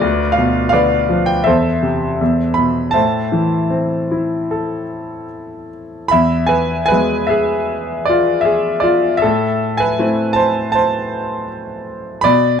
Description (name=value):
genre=classical, lyrical solo piano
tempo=72-84 BPM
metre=4/4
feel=rubato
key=A minor, A harmonic minor from 6.1 s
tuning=A4 = 440 Hz
part: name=clear grand piano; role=solo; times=0.0-12.6 s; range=D2 to B5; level=-14 LUFS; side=equal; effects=none
room=moderate small room reverb, RT60 0.6 s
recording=dark, warm production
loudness=-14 LUFS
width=side -7 dB against mid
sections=0.0-6.1 A section; 6.1-12.6 B section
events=none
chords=0.0 Bdim/D; 1.5 Am/E; 2.2 E5; 3.0 Am; 6.1 E; 9.2 Am